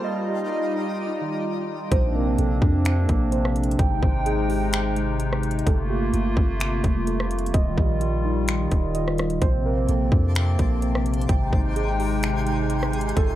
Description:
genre	hip hop, atmospheric cloud-rap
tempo	128 BPM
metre	4/4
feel	half-time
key	Bb major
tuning	A4 = 440 Hz
part	hollow soft pad	sustained chords	0.0-13.4 s	Bb2 to G5	-26 LUFS	left 1 dB	chorus, sidechain pumping
part	muted felt-like synth keys	arpeggios	0.0-13.4 s	Eb3 to G5	-30 LUFS	right 8 dB	chorus, low-pass filter, analog delay
part	twinkling granular texture	texture	0.0-1.9, 9.8-13.4 s	A3 to Bb6	-36 LUFS	equal	built-in reverb
part	long sustained 808-style bass	bass	1.9-13.4 s	Eb1 to F2	-24 LUFS	equal	none
part	trap drum kit	drums	1.9-13.3 s	finger snaps, hi-hat, kick drum, rim click	-23 LUFS	equal	none
room	digital ambience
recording	none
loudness	-20 LUFS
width	side -13 dB against mid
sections	0.0-1.9 A section; 1.9-13.4 B section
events	filter sweep 0.0-1.9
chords	0.0 Ebmaj9; 1.9 Bbmaj9; 3.8 Abmaj7; 5.7 Gm11; 7.5 Ebadd9; 9.4 Bbmaj9; 11.3 Abmaj7

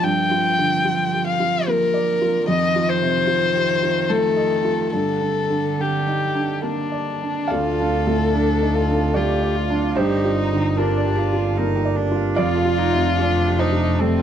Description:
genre	neoclassical piano and strings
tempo	74 BPM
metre	3/4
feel	rubato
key	G minor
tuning	A4 = 439 Hz
part	rich violin	melody	0.0-14.2 s	C4 to G5	-21 LUFS	left 4 dB	none
part	rich cello	second line	0.0-14.2 s	D3 to G4	-26 LUFS	right 6 dB	none
part	felt-muted upright piano	accompaniment	0.0-14.2 s	D2 to F5	-23 LUFS	right 2 dB	none
part	concert harp	arpeggios	7.5-14.2 s	D4 to F5	-30 LUFS	right 4 dB	slapback echo
part	dark double bass	bass	7.5-14.2 s	F1 to D2	-23 LUFS	equal	none
room	light reverb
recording	dark, warm production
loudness	-18 LUFS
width	side -9 dB against mid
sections	0.0-7.5 A section; 7.5-14.2 A section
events	none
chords	0.0 Gm7; 2.5 F7; 4.9 Gm; 7.5 Dm; 10.0 Gm7; 12.4 F7

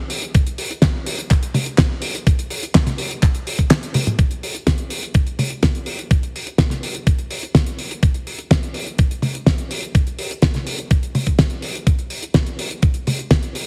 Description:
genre	italo disco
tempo	125 BPM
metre	4/4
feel	straight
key	none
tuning	none
part	damped 70s drum kit	drums	0.1-13.6 s	handclaps, hi-hat, snare drum, toms	-22 LUFS	equal	studio reverb
part	electronic kick drum	drums	0.3-13.4 s	none	-19 LUFS	equal	studio reverb
room	light reverb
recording	heavily compressed radio sound, multiband compression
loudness	-19 LUFS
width	mono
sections	0.0-4.2 A section; 4.2-13.7 B section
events	kick drops out 3.7-4.2; drum fill 3.9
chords	none

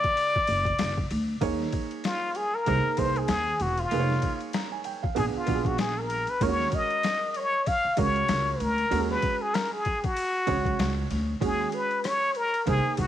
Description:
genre	hip hop, jazz-hop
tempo	96 BPM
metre	4/4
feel	swing 58% on 16ths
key	Eb minor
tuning	A4 = 440 Hz
part	trumpet with plunger mute	melody	0.0-13.1 s	F4 to F5	-26 LUFS	left 2 dB	none
part	warm grand piano	accompaniment	0.0-13.1 s	C#3 to Bb5	-32 LUFS	right 10 dB	none
part	boom bap sampler-style drum kit	drums	0.0-13.1 s	hi-hat, kick drum, ride cymbal, rim click, snare drum	-32 LUFS	left 2 dB	overdrive
part	upright bass	bass	0.4-13.1 s	E1 to Eb2	-29 LUFS	equal	none
room	light reverb, small room ambience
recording	1960s-style stereo, vinyl crackle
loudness	-24 LUFS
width	side -11 dB against mid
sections	0.0-1.4 A section; 1.4-11.4 B section; 11.4-13.1 C section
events	muted trumpet solo 1.4-11.4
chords	0.0 Bb7#9b13 (rootless); 1.4 Eb7sus4; 2.7 C7alt; 3.9 Db69/F; 5.2 Bb7b9; 6.4 Ebm7 (rootless); 11.4 Ebm7

